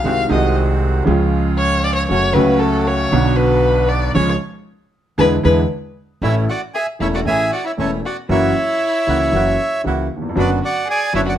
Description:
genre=tango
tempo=116 BPM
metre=4/4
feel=rubato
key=A major from 6.2 s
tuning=A4 = 439 Hz
part: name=warm violin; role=second line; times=0.0-11.3 s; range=C#4 to E#5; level=-20 LUFS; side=left 3 dB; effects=none
part: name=clear upright piano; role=accompaniment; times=0.0-11.4 s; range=E1 to A4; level=-18 LUFS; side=right 1 dB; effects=none
part: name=bandoneon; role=stabs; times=0.0-11.4 s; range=G#3 to F#4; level=-26 LUFS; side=right 5 dB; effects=none
part: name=upright bass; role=bass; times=0.0-11.4 s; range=E1 to E2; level=-21 LUFS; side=equal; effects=none
part: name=bandoneon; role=melody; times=6.2-11.3 s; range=A4 to G#5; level=-19 LUFS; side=right 2 dB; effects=none
room=moderate studio reverb, RT60 0.8 s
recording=none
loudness=-14 LUFS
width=side -11 dB against mid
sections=0.0-6.2 A section; 6.2-11.4 B section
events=violin solo 0.0-6.2; band accent 4.2-6.2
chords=0.0 G#7/B#; 1.1 C#; 2.1 F#m; 3.1 Bm; 4.2 C#; 5.2 E7; 6.2 A; 8.3 F#7; 10.4 Bm/F#

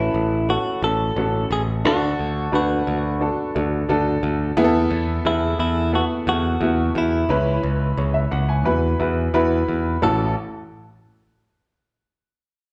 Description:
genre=piano-driven pop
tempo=88 BPM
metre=4/4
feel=straight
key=A major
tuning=A4 = 440 Hz
part: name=direct-recorded clean electric guitar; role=melody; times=0.0-10.3 s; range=E4 to A4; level=-27 LUFS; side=equal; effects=none
part: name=warm upright piano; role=accompaniment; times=0.0-10.3 s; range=A1 to G#5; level=-24 LUFS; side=equal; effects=none
part: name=modern bright picked electric bass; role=bass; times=0.0-10.3 s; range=A1 to E2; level=-25 LUFS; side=equal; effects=none
room=wet large studio reverb, RT60 1.3 s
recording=band playing live in one room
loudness=-21 LUFS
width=mono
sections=0.0-10.0 A section; 10.0-12.7 B section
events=none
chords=0.0 A6; 1.8 D; 4.6 Esus4; 7.3 C#m7; 8.7 Esus2; 10.0 A6

